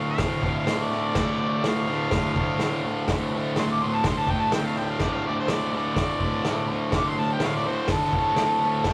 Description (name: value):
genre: garage rock duo or trio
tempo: 125 BPM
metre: 4/4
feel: straight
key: D minor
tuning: A4 = 442 Hz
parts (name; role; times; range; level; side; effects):
- overdriven harmonica; melody; 0.0-8.9 s; A4 to D6; -30 LUFS; equal; analog delay
- fuzz guitar; riff; 0.0-8.9 s; D2 to D3; -28 LUFS; equal; distortion
- vintage drum kit; drums; 0.2-8.9 s; crash cymbal, hi-hat, kick drum, snare drum; -30 LUFS; equal; none
room: moderate booth ambience, RT60 0.2 s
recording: rough rehearsal-room recording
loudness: -25 LUFS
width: mono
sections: 0.0-8.9 A section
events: harmonica solo 0.0-8.9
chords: 0.0 Dm